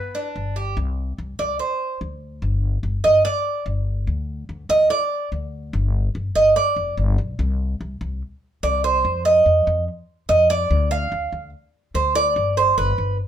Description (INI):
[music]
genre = latin, Cuban son and guajira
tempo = 145 BPM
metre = 4/4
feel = straight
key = C harmonic minor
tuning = A4 = 439 Hz
[part]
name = warm clarinet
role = melody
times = 0.0-0.6 s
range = B4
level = -34 LUFS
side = left 4 dB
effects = none
[part]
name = Cuban tres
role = arpeggios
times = 0.0-13.2 s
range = B3 to F5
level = -18 LUFS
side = right 2 dB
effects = none
[part]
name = upright bass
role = bass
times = 0.4-13.2 s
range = F1 to F2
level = -23 LUFS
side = left 1 dB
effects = none
[sound]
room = moderate studio reverb, RT60 0.5 s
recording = minimal, uncompressed stereo recording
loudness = -18 LUFS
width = side -10 dB against mid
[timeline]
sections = 0.8-13.3 A section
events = Cuban tres solo 0.8-13.3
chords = 0.0 G; 0.8 Csus2; 2.4 G5; 4.1 N.C.; 5.7 G5; 7.4 Csus2; 9.0 Cmadd11/F (rootless); 10.7 Dm; 12.4 G